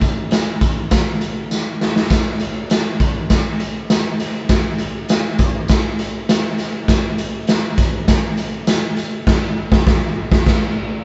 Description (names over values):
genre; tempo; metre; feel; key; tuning
soul; 100 BPM; 4/4; straight; none; none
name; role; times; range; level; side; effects
raw garage drum kit; drums; 0.0-10.7 s; crash cymbal, hi-hat, kick drum, snare drum; -18 LUFS; equal; none
tambourine; percussion; 0.0-9.1 s; none; -35 LUFS; equal; none
room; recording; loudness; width
light reverb; band playing live in one room, nothing above 7.9 kHz; -18 LUFS; mono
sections
0.0-11.0 A section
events
drum fill 1.5-2.1, 9.3-11.0; band accent 9.3-11.0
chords
none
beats
0.32 0.92 1.51 | 2.11 2.70 3.30 3.90 | 4.49 5.09 5.69 6.29 | 6.88 7.48 8.08 8.67 | 9.27 9.87 10.47